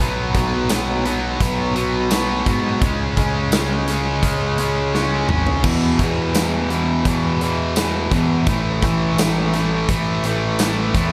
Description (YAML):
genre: classic rock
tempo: 85 BPM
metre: 4/4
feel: straight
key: E major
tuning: A4 = 440 Hz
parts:
  - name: overdriven electric guitar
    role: riff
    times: 0.0-11.1 s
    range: E2 to C#4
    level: -23 LUFS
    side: equal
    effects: none
  - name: fuzz picked electric bass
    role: bass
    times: 0.0-11.1 s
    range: G#1 to G#2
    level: -25 LUFS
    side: equal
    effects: overdrive
  - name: big rock drum kit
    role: drums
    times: 0.3-11.1 s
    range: crash cymbal, hi-hat, kick drum, snare drum, tambourine, toms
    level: -24 LUFS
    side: equal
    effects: none
room: light reverb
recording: none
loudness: -19 LUFS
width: mono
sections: 0.0-11.1 A section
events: drum fill 4.9-5.6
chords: 0.0 B5; 2.8 C#5; 5.6 E5; 8.5 A5